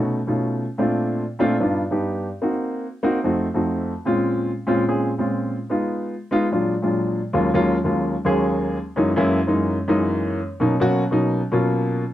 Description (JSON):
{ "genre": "jazz", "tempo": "147 BPM", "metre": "4/4", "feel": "straight", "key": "Eb minor from 7.3 s", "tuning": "A4 = 439 Hz", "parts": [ { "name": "warm baby grand piano", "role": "solo", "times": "0.0-12.0 s", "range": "Eb2 to Ab4", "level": "-19 LUFS", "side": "equal", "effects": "none" } ], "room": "light reverb", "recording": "dry, close 1970s-style studio recording", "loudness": "-19 LUFS", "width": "side -13 dB against mid", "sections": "0.0-7.3 A section; 7.3-12.1 B section", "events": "none", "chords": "0.0 B9; 0.8 Bbmaj7; 1.6 G7b13; 2.4 Cm7b5; 3.2 F7b9; 4.1 Bbm7; 5.7 Fm7b5; 6.5 Bb7b13; 7.3 Ebm11; 9.0 Gb13; 10.6 Bmaj9" }